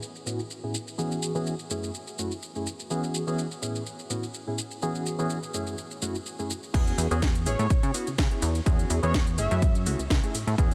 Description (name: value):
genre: filtered disco house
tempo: 125 BPM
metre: 4/4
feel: swing 54% on 16ths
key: E major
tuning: A4 = 437 Hz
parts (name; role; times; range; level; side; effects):
- house drum kit; drums; 0.0-10.7 s; crash cymbal, hi-hat, shaker, snare drum; -37 LUFS; equal; sidechain pumping on perc, sidechain pumping on hats, sidechain pumping on cymbals
- bright reed electric piano; accompaniment; 0.3-10.7 s; F#2 to G#4; -34 LUFS; equal; fast tremolo, phaser, sidechain pumping, low-pass filter
- plucky analog bass; bass; 6.7-10.7 s; F#1 to C#3; -30 LUFS; equal; sidechain pumping, low-pass filter
- electronic kick drum; drums; 6.7-10.7 s; none; -27 LUFS; equal; none
- analog synth brass; melody; 7.5-9.8 s; C#5 to E5; -37 LUFS; equal; chorus, cassette tape, sidechain pumping, low-pass filter, delay
room: light reverb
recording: none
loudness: -28 LUFS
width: mono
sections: 0.0-6.7 A section; 6.7-10.7 B section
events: filter sweep on reed electric piano 0.0-6.7; drop 6.7-10.7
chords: 0.0 Amaj7; 1.0 E69; 1.7 F#m9; 2.9 E69; 3.6 Amaj7; 4.8 E69; 5.5 F#m9; 6.7 E69; 7.5 Amaj7; 8.7 E69; 9.4 F#m9